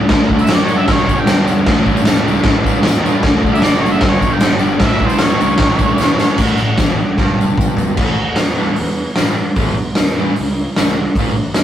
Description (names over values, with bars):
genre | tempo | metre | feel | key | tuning
garage rock duo or trio | 152 BPM | 4/4 | straight | A mixolydian | A4 = 437 Hz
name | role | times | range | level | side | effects
fuzz guitar | riff | 0.0-11.3 s | G2 to D4 | -19 LUFS | left 1 dB | distortion
fuzz fingered electric bass | bass | 0.0-11.6 s | F#1 to G2 | -21 LUFS | equal | overdrive
raw garage drum kit | drums | 0.1-11.6 s | crash cymbal, hi-hat, kick drum, snare drum, toms | -14 LUFS | equal | none
octave-fuzz lead guitar | melody | 0.4-6.4 s | C5 to G5 | -19 LUFS | right 2 dB | distortion
tambourine | percussion | 0.4-11.6 s | none | -35 LUFS | left 6 dB | none
room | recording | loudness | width
light reverb | rough rehearsal-room recording | -12 LUFS | side -11 dB against mid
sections
0.0-6.4 A section; 6.4-8.0 B section; 8.0-11.6 C section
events
drum fill 6.0-6.4, 7.2-8.0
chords
0.1 D; 0.9 G5; 1.7 A5; 3.2 D; 4.0 G5; 4.8 A; 6.4 A5; 8.0 A